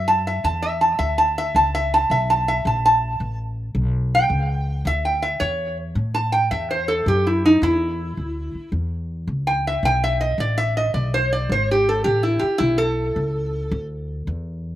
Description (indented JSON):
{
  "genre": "acoustic country blues, solo or duo",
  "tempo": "108 BPM",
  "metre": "4/4",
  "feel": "swing 68% on 8ths",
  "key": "A mixolydian",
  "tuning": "A4 = 443 Hz",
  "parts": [
    { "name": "metal-body resonator slide guitar", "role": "melody", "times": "0.0-13.9 s", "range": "D#4 to A5", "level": "-19 LUFS", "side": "equal", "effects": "slapback echo" },
    { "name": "upright bass", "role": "bass", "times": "0.0-14.8 s", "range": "G#1 to A2", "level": "-24 LUFS", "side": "equal", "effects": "none" }
  ],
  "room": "little or no reverb",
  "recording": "recorded outdoors, with no room sound",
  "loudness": "-18 LUFS",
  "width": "side -13 dB against mid",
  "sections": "0.0-14.8 A section",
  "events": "resonator guitar played with a steel bar solo 0.0-14.8",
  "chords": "0.0 D; 3.2 A; 7.6 E; 12.0 A"
}